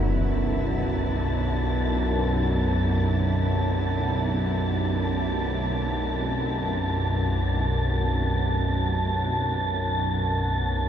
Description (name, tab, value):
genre	dark ambient drone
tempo	free time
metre	none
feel	none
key	unclear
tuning	A4 = 439 Hz
part	warm symphonic cello section	sustained chords	0.0-10.9 s	D3 to G4	-33 LUFS	equal	none
part	organ-like drone	drone	0.0-10.9 s	B1 to F#2	-24 LUFS	equal	ensemble chorus, built-in reverb
part	wind-like tuned noise texture	texture	0.2-10.9 s	A5	-30 LUFS	equal	built-in reverb
room	wet huge ambient reverb, RT60 8.1 s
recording	none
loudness	-23 LUFS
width	side -9 dB against mid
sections	0.0-10.9 A section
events	fade-out on cello section 0.0-10.9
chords	0.0 C6/B